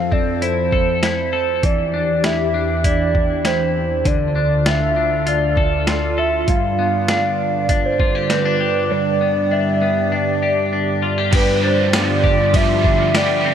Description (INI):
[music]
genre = dream pop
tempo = 99 BPM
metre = 4/4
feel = straight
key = unclear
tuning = A4 = 439 Hz
[part]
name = hollow clarinet-like synth lead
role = melody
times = 0.0-13.5 s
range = B4 to F5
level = -20 LUFS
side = right 1 dB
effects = chorus, digital delay
[part]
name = phased analog pad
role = sustained chords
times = 0.0-13.5 s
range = D2 to D5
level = -21 LUFS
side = right 2 dB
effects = phaser, chorus
[part]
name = clean electric guitar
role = arpeggios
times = 0.0-13.5 s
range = G2 to A4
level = -21 LUFS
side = left 3 dB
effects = lush chorus, digital delay
[part]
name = boom bap sampler-style drum kit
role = drums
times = 0.1-13.3 s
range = crash cymbal, hi-hat, kick drum, ride cymbal, snare drum, tambourine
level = -20 LUFS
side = equal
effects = none
[part]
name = overdriven electric guitar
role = accompaniment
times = 11.3-13.5 s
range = G2 to G4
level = -22 LUFS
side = right 5 dB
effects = harmonic tremolo, ensemble chorus
[sound]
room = moderate huge ambient reverb, RT60 4.4 s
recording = none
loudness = -15 LUFS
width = side -8 dB against mid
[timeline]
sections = 0.0-11.3 A section; 11.3-13.5 B section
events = none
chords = 0.0 Fmaj7; 1.6 Em7; 4.1 Dm; 6.5 G7